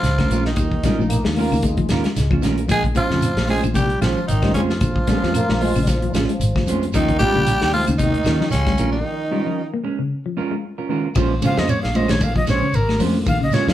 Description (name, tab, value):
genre	afrobeat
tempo	113 BPM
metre	4/4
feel	swing 55% on 16ths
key	Bb dorian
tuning	A4 = 440 Hz
part	raspy tenor saxophone	melody	0.0-9.7 s	Db4 to Ab4	-24 LUFS	equal	none
part	bright trombone	second line	0.0-9.7 s	Db3 to Ab3	-27 LUFS	right 2 dB	none
part	semi-hollow electric guitar	arpeggios	0.0-13.6 s	C3 to Bb3	-25 LUFS	left 4 dB	none
part	fingered electric bass	bass	0.0-13.7 s	Ab1 to F2	-22 LUFS	equal	none
part	warm soul drum kit	drums	0.0-13.7 s	hi-hat, kick drum, ride cymbal, snare drum	-24 LUFS	left 1 dB	none
part	shekere	percussion	0.0-13.7 s	none	-27 LUFS	right 2 dB	none
part	semi-hollow electric guitar	stabs	0.2-13.7 s	Ab3 to C5	-25 LUFS	right 5 dB	none
part	claves	percussion	0.2-13.4 s	none	-40 LUFS	left 5 dB	none
part	congas	percussion	0.2-13.7 s	none	-26 LUFS	left 2 dB	none
part	muted trombone section	second line	1.1-6.8 s	Db3 to Bb3	-28 LUFS	left 1 dB	none
part	breathy bright jazz flute	melody	11.5-13.7 s	Bb4 to F5	-22 LUFS	equal	none
room	wet large studio reverb, RT60 0.9 s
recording	band playing live in one room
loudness	-17 LUFS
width	side -12 dB against mid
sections	0.0-11.2 A section; 11.2-13.7 B section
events	break 9.1-11.2; flute solo 11.2-13.7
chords	0.0 Eb9sus4; 2.7 Bbm9; 6.9 Eb9sus4; 11.2 Bbm9